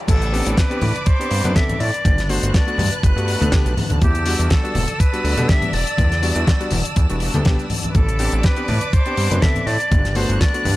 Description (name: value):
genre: nu-disco, nu disco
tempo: 122 BPM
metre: 4/4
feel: swing 55% on 16ths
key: unclear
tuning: A4 = 439 Hz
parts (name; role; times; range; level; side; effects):
- clear symphonic violin section; sustained chords; 0.0-10.8 s; B4 to F#6; -28 LUFS; right 1 dB; sidechain pumping
- bright silver concert flute; melody; 0.1-10.8 s; G4 to E5; -25 LUFS; equal; analog delay
- fat analog bass; bass; 0.1-10.8 s; E1 to B2; -20 LUFS; equal; tube saturation
- damped 70s drum kit; drums; 0.1-10.8 s; crash cymbal, hi-hat, snare drum; -25 LUFS; left 1 dB; low-pass filter on hats, low-pass filter on cymbals, low-pass filter on snare, low-pass filter on room
- electronic kick drum; drums; 0.1-10.5 s; none; -16 LUFS; equal; none
- congas; percussion; 0.1-10.8 s; none; -26 LUFS; left 2 dB; none
- clear electric grand piano; accompaniment; 0.3-10.6 s; G3 to B4; -26 LUFS; left 1 dB; tape echo
room: studio ambience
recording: dry, gritty hardware recording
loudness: -16 LUFS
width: side -17 dB against mid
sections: 0.1-10.8 A section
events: drop 0.1-10.8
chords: 0.1 Am11; 2.0 Gmaj7; 4.0 Em7; 8.0 Am11; 9.9 Gmaj7